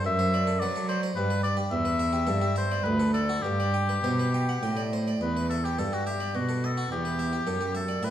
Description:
classical, baroque-style sonata movement with continuo; 100-109 BPM; 3/4; straight; G major; A4 = 442 Hz
clear oboe; melody; 0.0-8.1 s; F#4 to E5; -30 LUFS; left 3 dB
harpsichord; accompaniment; 0.0-8.1 s; D2 to G5; -30 LUFS; right 1 dB
rich cello; bass; 0.0-8.1 s; D2 to F#3; -28 LUFS; right 1 dB
wet recital hall reverb, RT60 1.6 s; minimal, uncompressed stereo recording; -25 LUFS; side -11 dB against mid
0.0-5.2 A section; 5.2-8.1 A section
0.1 D7/F#; 1.2 G; 1.7 Em; 2.9 D; 3.4 G; 5.2 Em; 6.4 B7; 6.9 Em
| 0.07 0.62 1.18 | 1.73 2.29 2.86 | 3.45 4.04 4.63 | 5.22 5.79 6.35 | 6.92 7.48 8.03

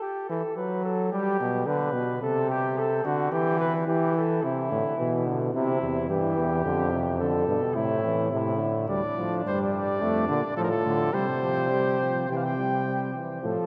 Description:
classical, imitative canzona for brass ensemble; 108 BPM; 4/4; straight; A minor; A4 = 440 Hz
warm flugelhorn; second line; 0.0-13.7 s; D4 to B4; -31 LUFS; equal
clear trombone; accompaniment; 0.3-13.7 s; B2 to A3; -30 LUFS; equal
warm bass trombone; bass; 4.7-13.6 s; D2 to C3; -31 LUFS; equal
warm cornet; melody; 8.9-13.2 s; A4 to G5; -32 LUFS; equal
wet cathedral reverb, RT60 5.4 s; -26 LUFS; mono
0.0-8.9 A section; 8.9-13.4 B section
0.0 Em (rootless); 1.1 G; 2.2 Am/C; 3.3 Em; 4.4 Am (rootless); 5.5 C; 6.6 Dm/F; 7.8 Am; 8.9 Dm; 11.1 Csus4; 12.3 C
| 0.01 0.57 1.12 1.67 | 2.22 2.77 3.32 3.87 | 4.43 4.98 5.54 6.09 | 6.65 7.20 7.75 8.31 | 8.88 9.45 10.01 10.57 | 11.13 11.71 12.29 12.87 | 13.44

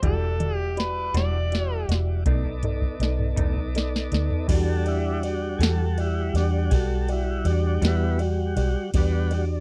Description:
slow blues; 54 BPM (dotted quarters); 12/8; straight; E minor; A4 = 443 Hz
overdriven harmonica; melody; 0.0-1.9 s; A4 to D5; -31 LUFS; equal; slapback echo
clean electric guitar; accompaniment; 0.0-8.1 s; B2 to F#4; -36 LUFS; equal; harmonic tremolo
dark concert grand piano; accompaniment; 0.0-9.6 s; D#4 to D5; -35 LUFS; equal
tonewheel organ; sustained chords; 0.0-9.6 s; G3 to D5; -33 LUFS; equal; slow rotary speaker
vintage muted fingered electric bass; bass; 0.0-9.6 s; E1 to E2; -27 LUFS; equal
soft vintage rhythm box; drums; 0.0-9.5 s; crash cymbal, hi-hat, kick drum, ride cymbal, snare drum, toms; -28 LUFS; equal
little or no reverb; dry, close 1970s-style studio recording; -24 LUFS; mono
0.0-4.5 A section; 4.5-9.6 B section
drum fill 0.0-4.5; tonewheel organ solo 4.5-9.6
0.0 Em9; 2.3 B7#9; 4.5 Em9
| 0.03 1.14 2.26 3.37 | 4.49 5.60 6.72 7.83 | 8.95

